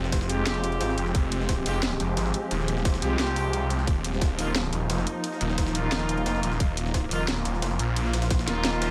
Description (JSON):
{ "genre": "dark technical drum and bass", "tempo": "176 BPM", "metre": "4/4", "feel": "straight", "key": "unclear", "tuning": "A4 = 440 Hz", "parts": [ { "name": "swarming drone", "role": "sustained chords", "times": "0.0-8.9 s", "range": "F3 to G4", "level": "-34 LUFS", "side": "equal", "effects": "built-in reverb, sidechain pumping" }, { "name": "snarling distorted saw bass", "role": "bass", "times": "0.0-8.9 s", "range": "Eb1 to C2", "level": "-30 LUFS", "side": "equal", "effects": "distortion, overdrive, sidechain pumping" }, { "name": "jungle sampler-style drum kit", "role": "drums", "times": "0.0-8.9 s", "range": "hi-hat, ride cymbal, snare drum", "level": "-40 LUFS", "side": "equal", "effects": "overdrive, high-pass filter on cymbals, high-pass filter on snare, high-pass filter on hats" }, { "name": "drum and bass drum kit", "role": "drums", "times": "0.1-8.9 s", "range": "hi-hat, snare drum", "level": "-33 LUFS", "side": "equal", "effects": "none" }, { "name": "electronic kick drum", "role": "drums", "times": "0.1-8.4 s", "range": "none", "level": "-28 LUFS", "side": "equal", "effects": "none" }, { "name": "warm brass ensemble", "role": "stabs", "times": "0.3-8.9 s", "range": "Ab3 to G4", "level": "-35 LUFS", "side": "equal", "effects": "delay" }, { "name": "reverse cymbal", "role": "sound effects", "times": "8.8-8.9 s", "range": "none", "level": "-38 LUFS", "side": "equal", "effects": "none" } ], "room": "moderate plate reverb, RT60 1.5 s", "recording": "dreamy mix soaked in reverb", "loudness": "-26 LUFS", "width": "mono", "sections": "0.0-8.9 A section", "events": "reverse cymbal 8.8", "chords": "0.0 Fmadd9; 3.9 Ebsus2", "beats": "0.12 0.47 0.81 | 1.15 1.49 1.83 2.17 | 2.51 2.85 3.19 3.53 | 3.87 4.21 4.56 4.90 | 5.24 5.58 5.92 6.26 | 6.60 6.94 7.28 7.62 | 7.96 8.31 8.65" }